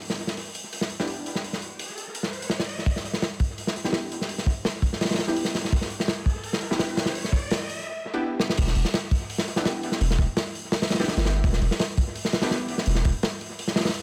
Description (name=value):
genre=drum and bass, jungle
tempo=168 BPM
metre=4/4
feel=straight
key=E minor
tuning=A4 = 440 Hz
part: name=orchestra-hit-like synth stab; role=stabs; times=0.0-13.8 s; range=B3 to G4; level=-34 LUFS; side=equal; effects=built-in reverb, dub echo
part: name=crunchy breakbeat drum kit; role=drums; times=0.0-14.0 s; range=crash cymbal, hi-hat, kick drum, snare drum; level=-28 LUFS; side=equal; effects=dub echo
part: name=riser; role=sound effects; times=1.2-7.9 s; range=none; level=-41 LUFS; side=equal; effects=none
part: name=long sustained 808-style bass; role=bass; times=8.6-13.1 s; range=E1 to G1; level=-26 LUFS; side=equal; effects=none
room=light reverb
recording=echo-heavy mix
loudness=-26 LUFS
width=mono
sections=0.0-2.9 A section; 2.9-8.6 B section; 8.6-14.0 C section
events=filter sweep on synth stab 0.0-2.9, 2.9-8.6; riser 1.2-2.9, 2.9-7.9; build-up 2.9-8.6; drum fill 8.4; drop 8.6-14.0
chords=0.0 Em7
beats=| 0.01 0.37 0.72 1.08 | 1.44 1.80 2.15 2.51 | 2.87 3.23 3.58 3.94 | 4.30 4.65 5.01 5.37 | 5.72 6.08 6.44 6.80 | 7.15 7.51 7.87 8.22 | 8.58 8.94 9.30 9.65 | 10.01 10.37 10.72 11.08 | 11.44 11.80 12.15 12.51 | 12.87 13.22 13.58 13.94